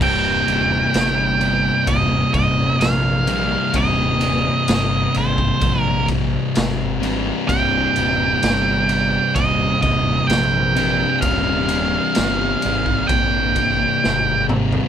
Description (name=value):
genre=stoner and doom metal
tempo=64 BPM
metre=4/4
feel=straight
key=C minor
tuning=A4 = 440 Hz
part: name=octave-fuzz lead guitar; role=melody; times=0.0-14.4 s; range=C5 to G5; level=-20 LUFS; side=right 3 dB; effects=distortion
part: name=thick fuzz guitar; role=riff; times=0.0-14.9 s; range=C2 to C3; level=-22 LUFS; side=left 7 dB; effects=distortion
part: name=thick fuzz guitar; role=riff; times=0.0-14.9 s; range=C2 to C3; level=-24 LUFS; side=right 8 dB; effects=distortion
part: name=fuzz picked electric bass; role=bass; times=0.0-14.8 s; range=C1 to Bb1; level=-24 LUFS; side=equal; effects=overdrive
part: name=raw garage drum kit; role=drums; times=0.0-14.9 s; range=crash cymbal, kick drum, ride cymbal, snare drum, toms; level=-24 LUFS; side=equal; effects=none
room=light reverb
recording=band playing live in one room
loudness=-16 LUFS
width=side -9 dB against mid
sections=0.0-14.9 A section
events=drum fill 14.0-14.9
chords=0.0 Cm